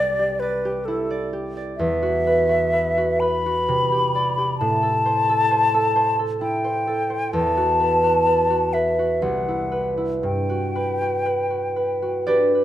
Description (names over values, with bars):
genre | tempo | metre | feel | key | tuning
classical, impressionist duo for flute and harp | 64 BPM | 3/4 | uneven beats, rubato | unclear | A4 = 440 Hz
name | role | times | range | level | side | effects
hollow concert flute | melody | 0.0-12.2 s | A4 to B5 | -21 LUFS | left 2 dB | none
concert harp | accompaniment | 0.0-12.6 s | C2 to D5 | -22 LUFS | right 1 dB | none
room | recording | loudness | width
wet recital hall reverb, RT60 1.3 s | none | -19 LUFS | side -12 dB against mid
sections
0.0-12.6 A section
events
none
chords
0.0 Cadd9; 1.8 Emadd9; 3.7 Cmaj9; 4.6 Am7; 7.3 Emadd9; 9.2 Cmaj7; 10.2 Gmaj7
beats
0.87 | 1.78 2.72 3.68 | 4.60 5.51 6.43 | 7.34 8.27 9.23 | 10.24 11.26 12.28